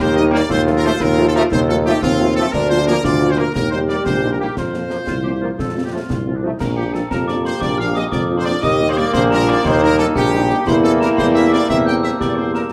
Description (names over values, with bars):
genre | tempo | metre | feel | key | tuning
military-style march for wind band | 118 BPM (dotted quarters) | 6/8 | straight | Bb major | A4 = 440 Hz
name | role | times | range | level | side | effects
warm trumpet section | melody | 0.0-12.6 s | F4 to G5 | -26 LUFS | equal | none
mellow woodwind section | second line | 0.0-12.6 s | D4 to G5 | -30 LUFS | equal | none
warm euphonium | second line | 0.0-12.7 s | C4 to G4 | -24 LUFS | equal | none
warm tuba | bass | 0.0-12.7 s | Bb1 to F2 | -21 LUFS | equal | none
dark French horn section | accompaniment | 0.2-12.6 s | F3 to G4 | -26 LUFS | equal | none
clear trombone section | sustained chords | 0.3-12.7 s | F3 to Bb3 | -26 LUFS | equal | none
concert snare drum, clash cymbals and concert bass drum | drums | 0.5-12.7 s | none | -28 LUFS | equal | none
glockenspiel with soft plastic mallets | second line | 6.6-12.7 s | G5 to G6 | -27 LUFS | equal | none
room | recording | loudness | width
wet small room reverb, RT60 0.5 s | none | -17 LUFS | mono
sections
0.0-6.6 A section; 6.6-12.7 B section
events
none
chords
0.5 F7/Eb; 2.5 Bb/D; 3.6 Eb; 4.6 Fsus4; 5.6 F; 6.6 Bb; 8.6 Eb; 10.7 C7/E